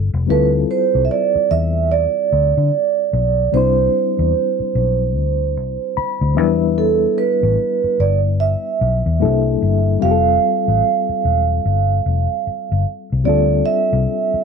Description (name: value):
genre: R&B, neo-soul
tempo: 74 BPM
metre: 4/4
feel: swing 61% on 16ths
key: D dorian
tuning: A4 = 435 Hz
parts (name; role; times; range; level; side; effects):
- mellow reed electric piano; accompaniment; 0.0-14.4 s; F#3 to B5; -22 LUFS; left 15 dB; fast tremolo
- vintage muted fingered electric bass; bass; 0.0-14.4 s; E1 to D3; -18 LUFS; left 2 dB; none
- vibraphone with soft mallets; melody; 0.3-14.4 s; A4 to F5; -18 LUFS; right 11 dB; none
room: light reverb, small room ambience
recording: 1960s-style stereo with parts hard left and right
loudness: -15 LUFS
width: side -6 dB against mid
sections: 0.3-14.4 A section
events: reed electric piano fill 5.5-6.8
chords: 0.3 Dm11; 3.5 Cmaj9; 6.4 Em7; 9.2 C13; 10.0 Fadd9; 13.3 Dm11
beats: | 0.28 1.09 1.90 2.71 | 3.52 4.33 5.14 5.95 | 6.76 7.58 8.39 9.20 | 10.01 10.82 11.63 12.44 | 13.25 14.06